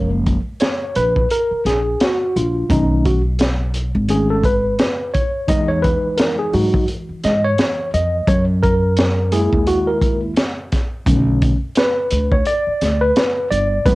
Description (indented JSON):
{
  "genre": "hip hop, jazz-hop",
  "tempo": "86 BPM",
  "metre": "4/4",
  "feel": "swing 58% on 16ths",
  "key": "unclear",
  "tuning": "A4 = 440 Hz",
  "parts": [
    { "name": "tine electric piano", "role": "accompaniment", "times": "0.0-13.9 s", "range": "D3 to D#5", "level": "-18 LUFS", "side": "equal", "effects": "overdrive, fast stereo tremolo, cassette tape" },
    { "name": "upright bass", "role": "bass", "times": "0.0-13.9 s", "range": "F#1 to G#2", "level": "-19 LUFS", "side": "equal", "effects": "none" },
    { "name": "crunchy breakbeat drum kit", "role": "drums", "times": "0.3-13.9 s", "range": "hi-hat, kick drum, snare drum", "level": "-19 LUFS", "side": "equal", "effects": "cassette tape" }
  ],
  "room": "light reverb",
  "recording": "home recording on cassette",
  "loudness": "-15 LUFS",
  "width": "side -20 dB against mid",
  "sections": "0.0-13.9 A section",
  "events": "tine electric piano solo 0.0-13.9",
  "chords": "0.0 F#maj7; 2.7 B7; 5.5 Emaj7; 8.3 F#7; 11.1 Bm7",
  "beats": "0.60 1.30 2.00 | 2.69 3.39 4.09 4.79 | 5.49 6.18 6.88 7.58 | 8.28 8.97 9.67 10.37 | 11.07 11.77 12.46 13.16 | 13.86"
}